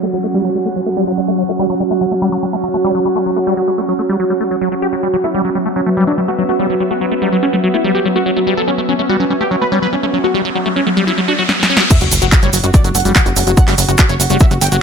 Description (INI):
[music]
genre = psychedelic trance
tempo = 144 BPM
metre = 4/4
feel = straight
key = unclear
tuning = A4 = 440 Hz
[part]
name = bubbling stepped-filter texture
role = sustained chords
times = 0.0-14.8 s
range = F#3 to F#4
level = -19 LUFS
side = right 1 dB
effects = chorus, built-in reverb, sidechain pumping
[part]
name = liquid acid bass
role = riff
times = 0.0-14.8 s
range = F#3 to G4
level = -18 LUFS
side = left 1 dB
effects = phaser, auto-pan, sidechain pumping, tape echo
[part]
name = downlifter, riser and sub drop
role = sound effects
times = 0.0-1.9, 9.9-13.6 s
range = none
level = -24 LUFS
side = equal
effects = none
[part]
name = airy breathy pad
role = texture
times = 0.0-11.5 s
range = C#4 to F#5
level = -22 LUFS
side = right 2 dB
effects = chorus, sidechain pumping
[part]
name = wide unison lead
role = melody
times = 5.2-14.8 s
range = F#3 to G5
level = -17 LUFS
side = equal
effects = phaser, sidechain pumping, tape echo
[part]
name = techno drum kit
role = drums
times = 11.5-14.8 s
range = crash cymbal, handclaps, hi-hat, snare drum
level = -16 LUFS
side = right 1 dB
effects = none
[part]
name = electronic kick drum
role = drums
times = 11.9-14.5 s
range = none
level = -10 LUFS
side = equal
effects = none
[part]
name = tube shaker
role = percussion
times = 11.9-14.8 s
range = none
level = -21 LUFS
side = right 3 dB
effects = none
[part]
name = plucky analog bass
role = bass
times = 12.0-14.8 s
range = F#1 to F#2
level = -16 LUFS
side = equal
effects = none
[sound]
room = moderate digital room reverb, RT60 1.0 s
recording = low-pass filter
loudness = -12 LUFS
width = side -6 dB against mid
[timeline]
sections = 0.0-11.9 A section; 11.9-14.8 B section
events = filter sweep on acid bass 0.0-11.9; filter sweep on synth texture 0.0-11.9; filter sweep 0.0-11.9; riser 9.9-11.9; drum fill 11.5-11.9; drop 11.9-14.8; impact 11.9-13.6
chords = 0.0 F#5